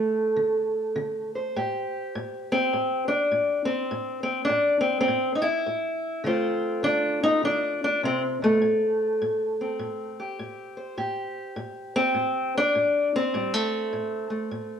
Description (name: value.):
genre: acoustic country blues, solo or duo.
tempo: 102 BPM.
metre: 4/4.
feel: swing 65% on 8ths.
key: A minor.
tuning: A4 = 438 Hz.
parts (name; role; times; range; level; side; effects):
fingerpicked steel-string acoustic guitar; solo; 0.0-14.8 s; A2 to C5; -23 LUFS; equal; none.
room: moderate large studio reverb, RT60 1.0 s.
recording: band playing live in one room.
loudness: -23 LUFS.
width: side -8 dB against mid.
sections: 0.0-14.8 A section.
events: none.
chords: 0.0 D5; 1.5 Am7; 6.2 Dm7; 8.6 Am7.